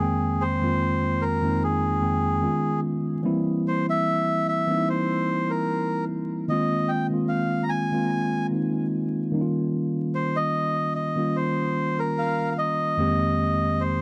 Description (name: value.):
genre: R&B.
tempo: 74 BPM.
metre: 4/4.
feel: straight.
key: unclear.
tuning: A4 = 440 Hz.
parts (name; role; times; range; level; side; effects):
melodica; melody; 0.0-14.0 s; Ab4 to Bb5; -28 LUFS; equal; tape echo.
mellow tine electric piano; accompaniment; 0.0-14.0 s; F2 to G5; -26 LUFS; equal; none.
room: little or no reverb.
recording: dry, close 1970s-style studio recording, vinyl crackle.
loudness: -25 LUFS.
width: mono.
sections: 0.0-13.0 A section; 13.0-14.0 B section.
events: none.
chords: 0.0 Fm11; 2.4 Db9; 3.2 C7; 6.5 Ab6; 9.3 Eb9; 13.0 Fm11.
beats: | 0.00 0.81 1.62 2.43 | 3.24 4.05 4.86 5.67 | 6.48 7.29 8.11 8.92 | 9.73 10.54 11.35 12.16 | 12.97 13.78.